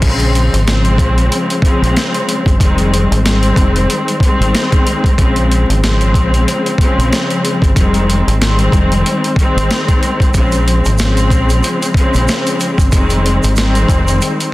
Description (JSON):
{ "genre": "hip hop, boom-bap hip-hop", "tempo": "93 BPM", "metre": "4/4", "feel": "swing 57% on 16ths", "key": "Bb dorian", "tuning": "A4 = 440 Hz", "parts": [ { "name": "muted studio string section", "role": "accompaniment", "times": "0.0-14.5 s", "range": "Db3 to C4", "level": "-15 LUFS", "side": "left 1 dB", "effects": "cassette tape, high-pass filter, low-pass filter" }, { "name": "deep dub fingered electric bass", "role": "bass", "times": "0.0-14.2 s", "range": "F1 to Bb1", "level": "-14 LUFS", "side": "equal", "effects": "none" }, { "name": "boom bap sampler-style drum kit", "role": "drums", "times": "0.0-14.5 s", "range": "crash cymbal, hi-hat, kick drum, snare drum", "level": "-14 LUFS", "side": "equal", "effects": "none" }, { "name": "egg shaker", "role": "percussion", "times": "10.3-14.5 s", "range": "none", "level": "-29 LUFS", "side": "right 6 dB", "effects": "none" } ], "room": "little or no reverb", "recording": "dense, heavily limited modern master, vinyl crackle", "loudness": "-10 LUFS", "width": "side -18 dB against mid", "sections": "0.0-14.5 A section", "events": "none", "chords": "0.0 Bbm9; 2.6 Fm9; 5.2 Bbm9; 7.8 Fm9; 10.3 Bbm9; 12.9 Fm9" }